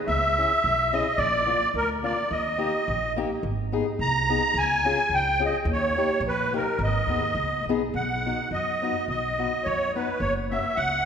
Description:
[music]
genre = alpine folk, alpine dance band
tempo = 107 BPM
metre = 2/4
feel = rubato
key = G# harmonic minor, B major from 8.0 s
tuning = A4 = 440 Hz
[part]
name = musette accordion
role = melody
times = 0.1-11.0 s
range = A#4 to A#5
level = -24 LUFS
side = right 1 dB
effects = none
[part]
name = upright bass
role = bass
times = 0.1-11.1 s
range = F#1 to F#2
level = -31 LUFS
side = right 1 dB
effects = none
[part]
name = fingerpicked steel-string acoustic guitar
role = accompaniment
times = 0.4-10.6 s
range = A#3 to G#4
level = -30 LUFS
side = left 5 dB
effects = none
[sound]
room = wet scoring stage reverb, RT60 2.1 s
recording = recorded in a church or concert hall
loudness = -22 LUFS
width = side -7 dB against mid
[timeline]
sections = 0.0-8.0 A section; 8.0-11.1 B section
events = none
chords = 0.1 C#m; 1.2 A#; 2.3 D#; 3.4 G#madd9; 4.6 C#; 5.7 D#7; 6.8 G#m; 8.0 B; 10.2 F#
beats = | 0.07 0.63 | 1.18 1.74 | 2.30 2.87 | 3.43 4.00 | 4.56 5.12 | 5.67 6.23 | 6.79 7.37 | 7.95 8.53 | 9.10 9.66 | 10.22 10.77

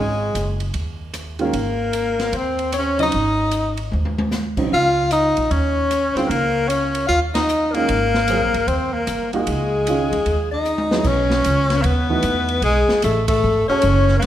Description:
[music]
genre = modal jazz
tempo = 151 BPM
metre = 4/4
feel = swing 65% on 8ths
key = Ab mixolydian, B mixolydian from 11.1 s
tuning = A4 = 440 Hz
[part]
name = warm tenor saxophone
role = melody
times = 0.0-14.3 s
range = G#3 to F4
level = -20 LUFS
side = equal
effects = none
[part]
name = clear alto saxophone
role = second line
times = 0.0-14.3 s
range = G#4 to F5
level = -24 LUFS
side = left 5 dB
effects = none
[part]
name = upright bass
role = bass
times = 0.0-14.3 s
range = E1 to E2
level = -23 LUFS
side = equal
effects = none
[part]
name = open jazz drum kit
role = drums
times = 0.4-14.3 s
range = crash cymbal, hi-hat, kick drum, ride cymbal, rim click, snare drum, toms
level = -28 LUFS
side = equal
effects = none
[part]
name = dark baby grand piano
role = accompaniment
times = 1.4-14.2 s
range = Db3 to A4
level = -25 LUFS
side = right 4 dB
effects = none
[sound]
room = moderate concert hall reverb, RT60 1.8 s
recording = recorded in a church or concert hall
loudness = -17 LUFS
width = side -11 dB against mid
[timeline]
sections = 0.0-11.1 A section; 11.1-14.3 B section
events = drum fill 3.9-4.3, 10.7-11.1; band accent 7.3, 13.2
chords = 0.0 Ab9sus4; 11.1 B9sus4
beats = 0.35 0.75 1.15 | 1.54 1.94 2.34 2.73 | 3.13 3.53 3.92 4.32 | 4.72 5.11 5.51 5.91 | 6.30 6.70 7.10 7.49 | 7.89 8.29 8.68 9.08 | 9.47 9.87 10.27 10.66 | 11.06 11.45 11.85 12.25 | 12.64 13.04 13.43 13.83 | 14.23

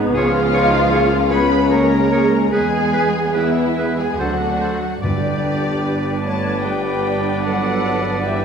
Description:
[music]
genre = cinematic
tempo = 74 BPM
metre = 3/4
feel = uneven beats, rubato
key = G major from 5.0 s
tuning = A4 = 439 Hz
[part]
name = muted studio viola section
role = accompaniment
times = 0.0-8.4 s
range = G#3 to E#4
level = -23 LUFS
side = right 2 dB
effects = none
[part]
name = mellow French horn section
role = sustained chords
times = 0.0-8.4 s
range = D3 to A4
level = -22 LUFS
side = left 2 dB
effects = none
[part]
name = muted studio double bass section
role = bass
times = 0.0-8.4 s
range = G1 to E2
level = -24 LUFS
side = right 2 dB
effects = none
[part]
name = muted studio violin section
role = melody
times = 0.1-8.4 s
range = D5 to B5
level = -26 LUFS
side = left 4 dB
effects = none
[part]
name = bright clarinet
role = second line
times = 0.1-8.4 s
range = G#4 to B4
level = -28 LUFS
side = right 1 dB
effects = none
[part]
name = bright flute section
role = second line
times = 0.1-8.4 s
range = E4 to C#5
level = -26 LUFS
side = equal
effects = none
[part]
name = muted symphonic cello section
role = bass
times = 0.1-8.4 s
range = G2 to B3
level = -26 LUFS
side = right 4 dB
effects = none
[part]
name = bright oboe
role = second line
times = 0.2-8.4 s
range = B4 to D5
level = -27 LUFS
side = right 2 dB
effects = none
[part]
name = muted studio violin section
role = second line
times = 0.2-8.4 s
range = E4 to A5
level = -26 LUFS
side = left 3 dB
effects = none
[part]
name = timpani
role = percussion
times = 5.0-6.2 s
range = G2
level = -25 LUFS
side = equal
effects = none
[sound]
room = wet scoring stage reverb, RT60 2.0 s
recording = minimal, uncompressed stereo recording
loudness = -15 LUFS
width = side -6 dB against mid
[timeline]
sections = 0.0-5.0 A section; 5.0-8.4 B section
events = none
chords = 0.2 C#; 2.5 E; 4.2 D7; 5.0 G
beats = | 0.15 0.93 1.73 | 2.54 3.37 4.20 | 5.03 5.84 6.64 | 7.44 8.23

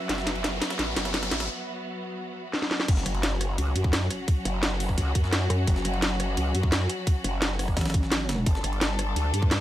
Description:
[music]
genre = dark technical drum and bass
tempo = 172 BPM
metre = 4/4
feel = straight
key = F# phrygian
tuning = A4 = 440 Hz
[part]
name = clear symphonic string section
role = sustained chords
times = 0.0-9.6 s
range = F#3 to A4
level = -33 LUFS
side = left 1 dB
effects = sidechain pumping, low-pass filter
[part]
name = riser and impact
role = sound effects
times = 0.0-4.3 s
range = none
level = -35 LUFS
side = left 1 dB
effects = none
[part]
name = ethereal airy pad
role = texture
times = 0.0-1.5 s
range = F#4 to E5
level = -40 LUFS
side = right 3 dB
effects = ensemble chorus, built-in reverb, sidechain pumping
[part]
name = growl bass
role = bass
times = 0.1-9.6 s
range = F#1 to G2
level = -28 LUFS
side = equal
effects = chorus, tube saturation, sidechain pumping
[part]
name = breakbeat sampler-style drum kit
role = drums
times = 0.1-9.6 s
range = hi-hat, ride cymbal, snare drum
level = -37 LUFS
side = right 1 dB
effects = high-pass filter on cymbals, high-pass filter on snare, high-pass filter on hats
[part]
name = drum and bass drum kit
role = drums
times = 0.1-9.6 s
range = crash cymbal, hi-hat, rim click, snare drum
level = -28 LUFS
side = equal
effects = none
[part]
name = electronic kick drum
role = drums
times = 2.9-9.5 s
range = none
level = -24 LUFS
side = equal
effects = none
[part]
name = pulsing pluck wobble bass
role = bass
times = 5.5-5.7, 7.8-8.5 s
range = A1 to F#2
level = -26 LUFS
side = equal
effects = chorus
[sound]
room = little or no reverb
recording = none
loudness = -24 LUFS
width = side -13 dB against mid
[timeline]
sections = 0.0-2.9 A section; 2.9-9.6 B section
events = build-up 0.0-2.9; drum fill 0.0-1.5, 2.5-2.9; riser 0.0-1.5; break 1.5-2.9; drop 2.9-9.6; impact 2.9-4.3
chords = 0.0 F#7(no3); 2.9 F#m; 8.5 G5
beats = | 0.09 0.44 0.79 1.14 | 1.49 1.84 2.19 2.54 | 2.88 3.23 3.58 3.93 | 4.28 4.63 4.98 5.33 | 5.67 6.02 6.37 6.72 | 7.07 7.42 7.77 8.12 | 8.46 8.81 9.16 9.51

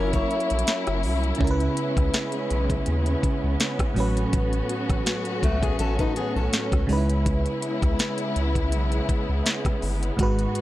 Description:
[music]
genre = contemporary R&B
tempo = 82 BPM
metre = 4/4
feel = swing 54% on 16ths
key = C# minor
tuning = A4 = 440 Hz
[part]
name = FM electric piano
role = accompaniment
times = 0.0-10.6 s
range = G#2 to B4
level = -28 LUFS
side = right 2 dB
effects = chorus
[part]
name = dark symphonic string section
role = sustained chords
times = 0.0-10.6 s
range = D#3 to F#4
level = -29 LUFS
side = left 1 dB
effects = none
[part]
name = fingerpicked steel-string acoustic guitar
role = arpeggios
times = 0.0-6.9 s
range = A3 to C#5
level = -28 LUFS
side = left 3 dB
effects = tape echo
[part]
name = warm sub bass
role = bass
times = 0.0-10.5 s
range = F#1 to D#2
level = -26 LUFS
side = equal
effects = none
[part]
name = trap drum kit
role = drums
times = 0.1-10.6 s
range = hi-hat, kick drum, rim click, snare drum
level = -25 LUFS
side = equal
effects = none
[sound]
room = little or no reverb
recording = dry, gritty hardware recording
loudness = -22 LUFS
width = side -15 dB against mid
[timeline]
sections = 0.0-10.6 A section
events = none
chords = 0.0 F#7; 1.4 C#m7; 4.0 A69; 6.9 C#m7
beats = 0.68 | 1.41 2.14 2.87 3.60 | 4.33 5.07 5.80 6.53 | 7.26 7.99 8.72 9.46 | 10.19

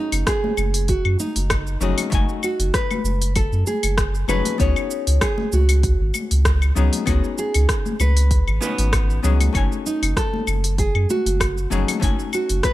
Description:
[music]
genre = sunset chillout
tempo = 97 BPM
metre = 4/4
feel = swing 54% on 16ths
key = F# dorian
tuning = A4 = 440 Hz
[part]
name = nylon-string guitar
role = melody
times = 0.0-12.7 s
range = D#4 to C#5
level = -25 LUFS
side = right 2 dB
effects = tape echo
[part]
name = archtop guitar, miked and amplified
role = accompaniment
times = 0.0-12.7 s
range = A3 to G#5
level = -28 LUFS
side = moving between left 8 dB and right 5 dB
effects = auto-pan, tape echo
[part]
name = warm sub bass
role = bass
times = 0.1-12.6 s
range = F#1 to F#2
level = -19 LUFS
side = equal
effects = none
[part]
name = smooth R&B drum kit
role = drums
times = 0.1-12.7 s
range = cabasa, claves, hi-hat, rim click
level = -26 LUFS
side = left 2 dB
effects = none
[part]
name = electronic kick drum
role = drums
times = 0.3-12.7 s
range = none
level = -23 LUFS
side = equal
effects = none
[part]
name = congas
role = percussion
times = 0.4-12.0 s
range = none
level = -30 LUFS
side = left 3 dB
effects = none
[sound]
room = digital ambience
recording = none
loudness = -17 LUFS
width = side -15 dB against mid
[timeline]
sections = 0.0-12.7 A section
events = none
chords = 0.0 F#m69; 4.6 C#7sus4; 9.5 F#m69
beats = 0.27 0.89 1.50 | 2.12 2.74 3.36 3.98 | 4.60 5.22 5.83 6.45 | 7.07 7.69 8.31 8.93 | 9.55 10.16 10.78 11.40 | 12.02 12.64

